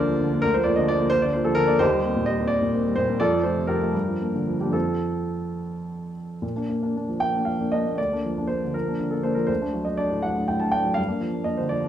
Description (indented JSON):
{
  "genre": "classical, romantic character piece for solo piano",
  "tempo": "70-88 BPM (dotted quarters)",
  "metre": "6/8",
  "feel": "rubato",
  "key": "Bb major",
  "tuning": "A4 = 435 Hz",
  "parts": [
    { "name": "warm baby grand piano", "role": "solo", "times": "0.0-11.9 s", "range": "D2 to A5", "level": "-22 LUFS", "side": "equal", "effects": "none" }
  ],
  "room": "moderate large studio reverb, RT60 0.8 s",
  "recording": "heard from further back in the room",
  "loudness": "-21 LUFS",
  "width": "side -10 dB against mid",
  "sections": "0.0-6.4 A section; 6.4-11.9 B section",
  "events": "none",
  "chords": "0.0 Bb/D; 1.8 Cm7/Eb; 3.2 F; 3.9 Gm7; 4.7 F; 6.4 Bb; 8.0 Bb/D; 9.5 D; 11.0 Gm7"
}